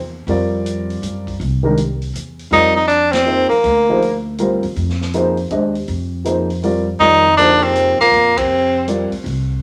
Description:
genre	modal jazz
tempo	161 BPM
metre	3/4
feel	swing 65% on 8ths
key	F dorian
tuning	A4 = 441 Hz
part	upright bass	bass	0.0-9.6 s	C2 to Gb2	-25 LUFS	equal	none
part	dark grand piano	accompaniment	0.3-9.1 s	Eb3 to Eb5	-21 LUFS	equal	none
part	swinging big-band drum kit	drums	0.3-9.4 s	hi-hat, kick drum, ride cymbal, snare drum	-34 LUFS	equal	none
part	bright tenor saxophone	melody	2.5-4.2, 7.0-8.9 s	Bb3 to Eb4	-14 LUFS	equal	none
part	dark trombone	second line	7.0-8.9 s	Bb2 to Eb3	-28 LUFS	equal	none
room	wet studio reverb, RT60 0.7 s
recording	none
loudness	-16 LUFS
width	mono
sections	0.0-9.6 A section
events	band accent 3.1, 8.3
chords	0.0 Fsus4; 2.5 Bbadd9; 7.0 Fm11

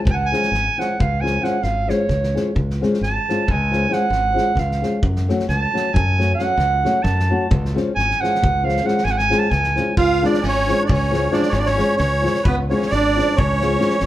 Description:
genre	balkan folk, Balkan wedding band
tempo	266 BPM (eighths)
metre	11/8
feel	straight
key	unclear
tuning	A4 = 440 Hz
part	bright clarinet	second line	0.1-14.1 s	B3 to A5	-21 LUFS	right 3 dB	none
part	modern bright fingered electric bass	bass	0.1-14.1 s	G#1 to F#2	-22 LUFS	equal	none
part	loose indie drum kit	percussion	0.1-14.1 s	kick drum, snare drum	-24 LUFS	equal	none
part	flamenco guitar	accompaniment	0.3-13.9 s	E#3 to F#4	-23 LUFS	left 3 dB	none
part	musette accordion	melody	10.0-14.1 s	B4 to E#5	-20 LUFS	right 2 dB	none
room	wet large studio reverb, RT60 1.4 s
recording	band playing live in one room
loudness	-16 LUFS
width	side -13 dB against mid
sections	0.0-10.0 A section; 10.0-14.1 B section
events	clarinet solo 0.0-10.0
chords	0.0 C#; 5.0 F#m; 7.5 C#

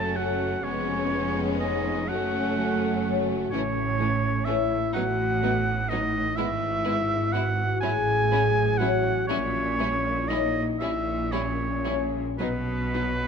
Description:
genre	classical, slow romantic movement for symphony orchestra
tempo	36-43 BPM (dotted quarters)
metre	6/8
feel	rubato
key	unclear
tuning	A4 = 440 Hz
part	rich chamber violin section	melody	0.0-13.0 s	C#4 to E4	-37 LUFS	left 2 dB	none
part	clear oboe	second line	0.0-13.3 s	B4 to A5	-28 LUFS	right 2 dB	none
part	rich symphonic violin section	second line	0.0-13.0 s	A3 to C#4	-35 LUFS	left 2 dB	none
part	rich symphonic viola section	accompaniment	0.0-13.0 s	E3 to A3	-34 LUFS	right 3 dB	none
part	mellow French horn section	sustained chords	0.0-13.3 s	B3 to A4	-30 LUFS	left 5 dB	none
part	concert harp	arpeggios	0.0-13.3 s	E#2 to C#6	-34 LUFS	left 11 dB	none
part	clear symphonic cello section	bass	0.0-13.3 s	E#2 to B2	-33 LUFS	right 2 dB	none
part	rich symphonic double bass section	bass	0.0-13.3 s	E#1 to B1	-31 LUFS	right 5 dB	none
room	moderate scoring stage reverb, RT60 2.1 s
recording	none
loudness	-23 LUFS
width	side -6 dB against mid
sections	0.0-13.3 A section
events	none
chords	0.0 F#m; 0.7 C#/E#; 2.1 F#m; 3.5 A; 5.0 B7/A; 6.4 E/G#; 7.8 F#m7/A; 9.3 A#dim7; 12.4 B5

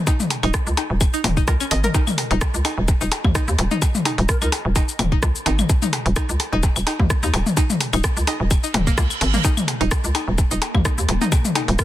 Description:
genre	minimal techno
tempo	128 BPM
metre	4/4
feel	swing 55% on 16ths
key	unclear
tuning	A4 = 439 Hz
part	string-like resonator pluck	riff	0.1-11.6 s	Bb3 to Eb5	-28 LUFS	equal	chorus, sidechain pumping, tape echo
part	electronic kick drum	drums	0.1-11.8 s	none	-19 LUFS	equal	none
part	garage drum kit	drums	0.1-11.8 s	cabasa, hi-hat, rim click	-26 LUFS	left 1 dB	soft clipping on snare
part	electronic percussion blips, toms and claves	percussion	0.1-11.8 s	none	-24 LUFS	left 3 dB	ping-pong delay
part	hollow knocking FM bass	bass	0.4-11.8 s	Eb1 to Eb2	-21 LUFS	equal	sidechain pumping
part	baroque flute	melody	4.3-4.5, 11.8 s	Bb4	-32 LUFS	left 1 dB	ping-pong delay
part	reverse cymbal	sound effects	8.7-9.4 s	none	-29 LUFS	right 7 dB	none
part	swarming drone	texture	10.2-11.8 s	Bb3	-34 LUFS	left 1 dB	none
room	little or no reverb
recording	dense, heavily limited modern master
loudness	-17 LUFS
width	side -14 dB against mid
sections	0.0-11.8 A section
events	reverse cymbal 8.7-9.4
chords	0.0 Eb5

